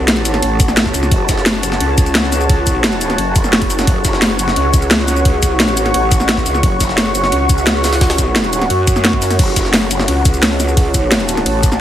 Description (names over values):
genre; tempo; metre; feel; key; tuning
dark technical drum and bass; 174 BPM; 4/4; straight; F# minor; A4 = 439 Hz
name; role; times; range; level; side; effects
deep dark ambient pad; sustained chords; 0.0-11.8 s; F#4 to C#6; -19 LUFS; equal; chorus, built-in reverb, sidechain pumping
growl bass; bass; 0.0-11.8 s; F#1 to F#2; -17 LUFS; equal; chorus, overdrive
drum and bass drum kit; drums; 0.1-11.8 s; crash cymbal, hi-hat, ride cymbal, shaker, snare drum; -16 LUFS; equal; overdrive, studio reverb
jungle sampler-style drum kit; drums; 0.1-11.7 s; hi-hat, ride cymbal, snare drum; -24 LUFS; right 1 dB; high-pass filter on cymbals, studio reverb, high-pass filter on snare, high-pass filter on hats, high-pass filter on room
electronic kick drum; drums; 0.6-11.7 s; none; -15 LUFS; equal; studio reverb
room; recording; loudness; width
light reverb; heavily compressed radio sound; -11 LUFS; side -11 dB against mid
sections
0.0-11.8 A section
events
none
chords
0.0 F#m